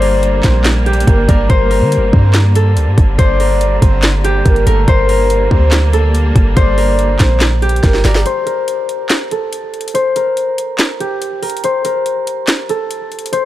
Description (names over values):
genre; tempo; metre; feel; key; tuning
hip hop, trap; 142 BPM; 4/4; half-time; G minor; A4 = 441 Hz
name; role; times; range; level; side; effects
concert harp; melody; 0.0-13.5 s; G4 to C5; -17 LUFS; left 2 dB; low-pass filter, tape echo
breathy flute-like synth lead; second line; 0.0-8.2 s; A4 to D5; -20 LUFS; right 2 dB; chorus, tape echo
warm symphonic string section; sustained chords; 0.0-8.2 s; D3 to Bb3; -22 LUFS; equal; none
clean 808-style bass; bass; 0.0-8.2 s; G1 to D3; -13 LUFS; equal; none
trap drum kit; drums; 0.0-13.4 s; handclaps, hi-hat, kick drum, snare drum; -14 LUFS; equal; none
room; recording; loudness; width
digital ambience; dark, warm production; -10 LUFS; side -14 dB against mid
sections
0.0-8.3 A section; 8.3-13.5 B section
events
drum fill 7.8-8.3; break 8.3-13.5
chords
0.0 Gm; 8.3 N.C.